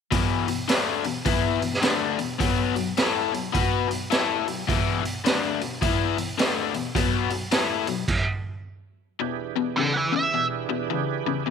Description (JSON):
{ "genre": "blues rock power trio and southern rock", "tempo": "106 BPM", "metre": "4/4", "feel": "swing 63% on 8ths", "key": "E mixolydian", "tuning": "A4 = 440 Hz", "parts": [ { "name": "overdriven electric guitar", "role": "riff", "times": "0.1-11.5 s", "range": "E2 to B4", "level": "-25 LUFS", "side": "left 10 dB", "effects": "none" }, { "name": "raw garage drum kit", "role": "drums", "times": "0.1-8.2 s", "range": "crash cymbal, hi-hat, kick drum, snare drum", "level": "-25 LUFS", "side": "right 3 dB", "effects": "none" }, { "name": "overdriven tonewheel organ", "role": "sustained chords", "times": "9.2-11.5 s", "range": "E3 to B4", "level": "-30 LUFS", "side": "right 15 dB", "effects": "chorus vibrato, slow rotary speaker" }, { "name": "octave-fuzz lead guitar", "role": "melody", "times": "9.8-10.4 s", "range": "B4 to F#5", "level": "-25 LUFS", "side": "right 3 dB", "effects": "wah, distortion" } ], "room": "light reverb, small room ambience", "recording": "1960s-style stereo with parts hard left and right", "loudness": "-22 LUFS", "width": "side -6 dB against mid", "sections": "0.1-9.2 A section; 9.2-11.5 B section", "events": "stop 8.1-9.2", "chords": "0.1 E5; 2.4 B5; 4.7 E5; 6.9 B5; 8.1 N.C.; 9.2 E7#9", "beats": "| 0.12 0.69 1.26 1.83 | 2.40 2.97 3.54 4.11 | 4.67 5.24 5.81 6.38 | 6.94 7.51 8.07 8.64 | 9.20 9.77 10.33 10.89 | 11.45" }